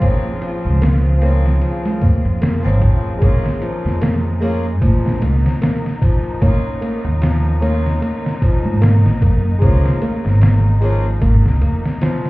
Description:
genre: trip hop.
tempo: 75 BPM.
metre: 4/4.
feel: swing 56% on 16ths.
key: Bb minor.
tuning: A4 = 436 Hz.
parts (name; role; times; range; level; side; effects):
harpsichord; accompaniment; 0.0-11.1 s; F3 to F4; -25 LUFS; equal; harmonic tremolo, tape echo.
muted symphonic string section; sustained chords; 0.0-12.3 s; F3 to F4; -30 LUFS; left 2 dB; none.
nylon-string guitar; arpeggios; 0.0-12.3 s; F3 to Bb3; -23 LUFS; left 1 dB; tape echo.
trip hop sampler-style drum kit; drums; 0.0-12.3 s; hi-hat, kick drum, ride cymbal, snare drum; -18 LUFS; equal; none.
backwards swelling texture; texture; 0.0-3.2 s; Ab4; -40 LUFS; left 1 dB; none.
upright bass; bass; 0.7-11.8 s; Ab1 to Bb2; -15 LUFS; equal; none.
room: small room ambience.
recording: heard muffled through a wall, club reverb, EQ.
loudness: -13 LUFS.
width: side -20 dB against mid.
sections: 0.0-3.2 A section; 3.2-12.3 B section.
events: none.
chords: 0.0 Dbmaj9; 3.2 Bbm7; 6.4 Eb7sus2; 9.6 Bbm7.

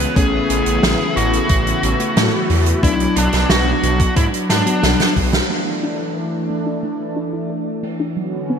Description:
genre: synthwave.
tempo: 90 BPM.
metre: 4/4.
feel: straight.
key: unclear.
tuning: A4 = 444 Hz.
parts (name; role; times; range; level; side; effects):
dark smooth lead guitar; melody; 0.0-5.1 s; D4 to B4; -21 LUFS; left 1 dB; overdrive, ping-pong delay, shimmer reverb.
warm analog pad; sustained chords; 0.0-8.6 s; C#3 to F#4; -22 LUFS; equal; chorus, sidechain pumping, shimmer reverb.
mellow FM electric piano; stabs; 0.0-5.5 s; F#3 to G#4; -24 LUFS; left 4 dB; chorus, shimmer reverb.
wide detuned saw bass; bass; 0.0-5.4 s; A1 to A2; -20 LUFS; equal; chorus.
loose indie drum kit; drums; 0.0-8.0 s; crash cymbal, hi-hat, snare drum; -21 LUFS; right 2 dB; low-pass filter on hats, low-pass filter on cymbals, low-pass filter on snare, low-pass filter on room, gated reverb.
electronic kick drum; drums; 0.2-5.3 s; none; -17 LUFS; equal; overdrive.
soft round pluck; arpeggios; 5.5-8.6 s; F#3 to A4; -27 LUFS; equal; chorus, ping-pong delay, shimmer reverb.
room: moderate plate reverb, RT60 3.6 s.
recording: bright 1980s-style digital production.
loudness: -15 LUFS.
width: side -7 dB against mid.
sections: 0.0-5.5 A section; 5.5-8.6 B section.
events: drum fill 4.5-5.5; band accent 5.3-5.7.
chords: 0.2 Aadd9; 2.8 Bm; 5.5 Dsus2.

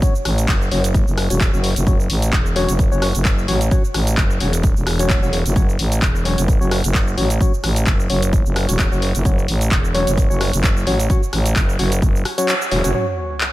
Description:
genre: bass house.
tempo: 130 BPM.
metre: 4/4.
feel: swing 55% on 16ths.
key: F# minor.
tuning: A4 = 440 Hz.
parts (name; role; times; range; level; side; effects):
percussive organ stab; stabs; 0.0-13.1 s; F#3 to C#5; -24 LUFS; left 1 dB; chorus, sidechain pumping, diffuse ambient delay.
electronic kick drum; drums; 0.0-12.1 s; none; -17 LUFS; equal; none.
house drum kit; drums; 0.0-13.5 s; cabasa, handclaps, hi-hat, rim click; -23 LUFS; equal; none.
growling FM bass; bass; 0.3-12.9 s; E1 to A1; -19 LUFS; equal; overdrive, sidechain pumping.
sub drop; sound effects; 12.9-13.5 s; none; -26 LUFS; equal; none.
room: light reverb.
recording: none.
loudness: -15 LUFS.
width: side -17 dB against mid.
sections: 0.0-12.9 A section.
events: filter sweep on FM bass 0.0-12.9; kick drops out 12.5-12.9; band accent 12.5; impact 12.9-13.5.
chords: 0.0 F#5.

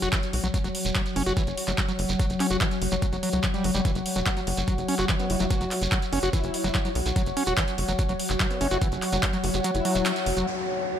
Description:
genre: psychedelic trance.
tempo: 145 BPM.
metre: 4/4.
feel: straight.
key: unclear.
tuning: A4 = 441 Hz.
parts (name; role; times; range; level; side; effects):
pulsing gated texture; sustained chords; 0.0-11.0 s; F#3; -32 LUFS; left 2 dB; chorus, built-in reverb, sidechain pumping.
overdriven acid bass; riff; 0.0-10.5 s; E3 to F#4; -30 LUFS; left 1 dB; auto-pan, sidechain pumping, dub echo.
tight sequencer bass; bass; 0.0-10.4 s; E1 to C#2; -30 LUFS; equal; none.
drum and bass drum kit; drums; 0.0-10.4 s; handclaps, hi-hat; -31 LUFS; equal; overdrive.
shekere; percussion; 0.0-10.5 s; none; -36 LUFS; right 4 dB; none.
warbly tape-like pad; texture; 0.0-11.0 s; F#4 to F#5; -31 LUFS; equal; chorus, built-in reverb, sidechain pumping.
electronic kick drum; drums; 0.1-9.3 s; none; -27 LUFS; equal; overdrive.
formant-sweep wobble bass; second line; 5.2-10.2 s; B3 to F#4; -37 LUFS; left 3 dB; chorus, cassette tape, sidechain pumping, high-pass filter, dub echo.
downlifter; sound effects; 10.5-11.0 s; none; -33 LUFS; left 1 dB; none.
room: light reverb.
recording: none.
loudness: -23 LUFS.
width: side -9 dB against mid.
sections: 0.0-10.5 A section.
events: kick drops out 9.6-10.5; band accent 10.1.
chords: 0.0 F#5.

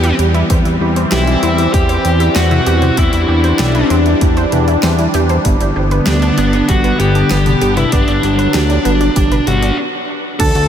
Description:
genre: synthwave.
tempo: 97 BPM.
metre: 4/4.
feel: straight.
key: unclear.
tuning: A4 = 440 Hz.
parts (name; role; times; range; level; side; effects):
high-gain lead guitar; melody; 0.0-10.7 s; D4 to A4; -18 LUFS; left 1 dB; distortion, ping-pong delay.
phased analog pad; sustained chords; 0.0-10.7 s; D3 to D4; -17 LUFS; equal; phaser, chorus, sidechain pumping.
analog pluck; arpeggios; 0.0-10.6 s; B3 to C5; -21 LUFS; right 3 dB; chorus, tape echo.
fat analog bass; bass; 0.0-10.7 s; G1 to E2; -15 LUFS; equal; none.
pop drum kit; drums; 0.0-10.7 s; crash cymbal, hi-hat, snare drum, toms; -22 LUFS; left 1 dB; small room ambience.
electronic kick drum; drums; 0.5-10.5 s; none; -15 LUFS; equal; small room ambience.
FM electric piano with soft pad layer; second line; 10.4-10.7 s; A5; -18 LUFS; right 3 dB; chorus, phaser.
room: moderate huge ambient reverb, RT60 8.2 s.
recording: dreamy mix soaked in reverb.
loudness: -11 LUFS.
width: side -9 dB against mid.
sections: 0.0-10.4 A section.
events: stop 9.8-10.4.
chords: 0.0 Em; 0.5 C; 5.5 G.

